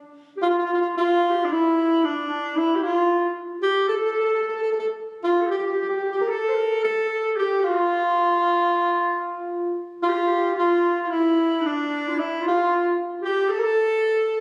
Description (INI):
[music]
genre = Turkish makam ensemble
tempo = 225 BPM (eighths)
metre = 9/8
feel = straight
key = unclear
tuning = A4 = 440 Hz
[part]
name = breathy alto saxophone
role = melody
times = 0.4-14.4 s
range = D4 to Bb4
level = -24 LUFS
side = equal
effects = none
[part]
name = mellow clarinet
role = second line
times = 0.4-14.4 s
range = D4 to C5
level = -26 LUFS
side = equal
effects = none
[sound]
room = moderate concert hall reverb, RT60 2.1 s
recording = recorded on a phone in the room, studio reverb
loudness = -22 LUFS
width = mono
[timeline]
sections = 0.4-14.4 A section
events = none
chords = none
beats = 0.17 | 0.43 0.70 0.97 1.23 1.50 1.77 2.03 2.30 2.56 | 2.83 3.10 3.36 3.63 3.90 4.16 4.43 4.69 4.96 | 5.23 5.49 5.76 6.03 6.29 6.56 6.83 7.09 7.36 | 7.62 7.89 8.16 8.43 8.69 8.96 9.22 9.49 9.76 | 10.03 10.29 10.56 10.83 11.09 11.36 11.63 11.89 12.16 | 12.43 12.70 12.96 13.23 13.50 13.77 14.03 14.30